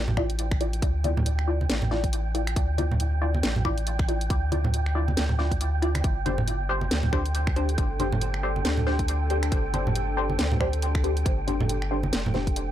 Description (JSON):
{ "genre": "deep dubstep", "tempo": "138 BPM", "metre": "4/4", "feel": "swing 58% on 16ths, half-time", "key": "D minor", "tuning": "A4 = 440 Hz", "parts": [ { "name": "soft dub sub bass", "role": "bass", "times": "0.0-12.7 s", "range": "F1 to D2", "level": "-27 LUFS", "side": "equal", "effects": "transformer saturation" }, { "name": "wind-like tuned noise texture", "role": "texture", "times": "0.0-12.7 s", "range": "G5", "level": "-35 LUFS", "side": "right 6 dB", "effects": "built-in reverb" }, { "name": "congas", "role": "percussion", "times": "0.1-12.4 s", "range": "none", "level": "-30 LUFS", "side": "right 2 dB", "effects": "none" }, { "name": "filtered dub chord stab", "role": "stabs", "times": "0.2-12.5 s", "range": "D4 to D5", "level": "-31 LUFS", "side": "left 2 dB", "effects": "phaser, lush chorus, dub echo" }, { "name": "electronic kick drum", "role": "drums", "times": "0.2-12.5 s", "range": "none", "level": "-26 LUFS", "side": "equal", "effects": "none" }, { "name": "garage drum kit", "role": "drums", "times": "0.2-12.7 s", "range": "finger snaps, hi-hat, snare drum", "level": "-31 LUFS", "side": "equal", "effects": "none" }, { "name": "dark analog pad", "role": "sustained chords", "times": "7.1-12.7 s", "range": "D4 to A4", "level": "-36 LUFS", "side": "right 1 dB", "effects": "chorus" } ], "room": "digital ambience", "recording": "dry, gritty hardware recording", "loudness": "-23 LUFS", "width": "side -12 dB against mid", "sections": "0.0-12.7 A section", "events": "none", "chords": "0.0 Dmadd9; 6.0 Gsus4" }